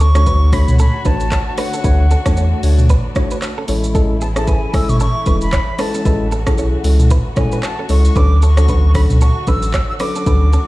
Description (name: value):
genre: afrobeats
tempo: 114 BPM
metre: 4/4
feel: swing 58% on 16ths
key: unclear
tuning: A4 = 440 Hz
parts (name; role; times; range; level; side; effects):
- jazz flute; melody; 0.0-10.7 s; F#5 to E6; -24 LUFS; equal; digital delay
- muted studio string section; sustained chords; 0.0-10.7 s; C#3 to C#5; -28 LUFS; left 1 dB; sidechain pumping
- direct-recorded clean electric guitar; riff; 0.0-10.6 s; B3 to C#5; -26 LUFS; right 5 dB; spring reverb, digital delay
- sub bass with octave; bass; 0.0-10.6 s; E1 to E2; -13 LUFS; equal; none
- afro-pop drum kit; drums; 0.0-10.7 s; handclaps, hi-hat, kick drum, rim click, shaker, toms; -17 LUFS; equal; none
- tine electric piano; accompaniment; 0.1-10.5 s; F#3 to C#5; -22 LUFS; left 3 dB; none
room: little or no reverb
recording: played on a big sound system in a bare room, stone room reverb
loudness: -12 LUFS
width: side -18 dB against mid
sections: 0.0-10.7 A section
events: none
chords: 0.0 Dmaj7; 3.7 Amaj7; 8.2 Dmaj7